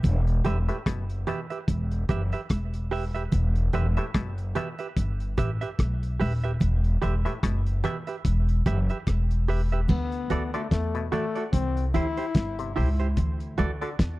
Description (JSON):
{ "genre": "roots reggae", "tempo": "73 BPM", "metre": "4/4", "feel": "swing 57% on 16ths", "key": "E minor", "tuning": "A4 = 440 Hz", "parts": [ { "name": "upright bass", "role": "bass", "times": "0.0-14.2 s", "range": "D#1 to E2", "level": "-25 LUFS", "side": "equal", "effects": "none" }, { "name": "cloth-damped thuddy drum kit", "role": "drums", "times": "0.0-14.2 s", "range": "crash cymbal, hi-hat, kick drum, rim click, snare drum", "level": "-24 LUFS", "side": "equal", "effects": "none" }, { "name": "congas", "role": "percussion", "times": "0.0-13.8 s", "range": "none", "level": "-35 LUFS", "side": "right 4 dB", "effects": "none" }, { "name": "semi-hollow electric guitar", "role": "accompaniment", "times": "0.4-13.9 s", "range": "E4 to E5", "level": "-34 LUFS", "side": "right 6 dB", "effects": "spring reverb, dub echo" }, { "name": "muted clav", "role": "arpeggios", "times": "0.5-14.0 s", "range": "A2 to E3", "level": "-36 LUFS", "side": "left 7 dB", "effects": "auto-wah" }, { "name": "bright trombone", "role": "second line", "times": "9.9-12.7 s", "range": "A3 to E4", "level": "-31 LUFS", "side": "left 5 dB", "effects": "dub echo" } ], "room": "studio reverb", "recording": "dry, close 1970s-style studio recording", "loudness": "-24 LUFS", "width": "side -19 dB against mid", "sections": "0.0-9.9 A section; 9.9-14.2 B section", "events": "none", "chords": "0.0 Em; 9.9 D; 11.5 C; 13.2 D" }